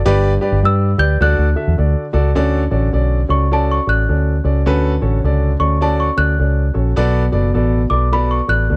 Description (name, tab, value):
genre	uptempo 1960s-style soul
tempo	104 BPM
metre	4/4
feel	swing 62% on 8ths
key	D major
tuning	A4 = 440 Hz
part	vintage muted fingered electric bass	bass	0.0-8.8 s	F#1 to G2	-18 LUFS	equal	none
part	warm concert grand piano	accompaniment	0.1-8.8 s	G2 to E5	-21 LUFS	equal	none
part	small celesta	melody	0.7-8.8 s	A5 to G6	-22 LUFS	equal	none
room	little or no reverb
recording	dark, warm production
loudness	-16 LUFS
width	mono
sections	0.0-2.4 A section; 2.4-8.8 B section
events	none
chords	0.1 G; 1.2 D; 2.4 Dmaj7; 7.0 Bm7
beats	| 0.06 0.64 1.21 1.79 | 2.36 2.94 3.51 4.09 | 4.67 5.24 5.82 6.40 | 6.97 7.55 8.13 8.70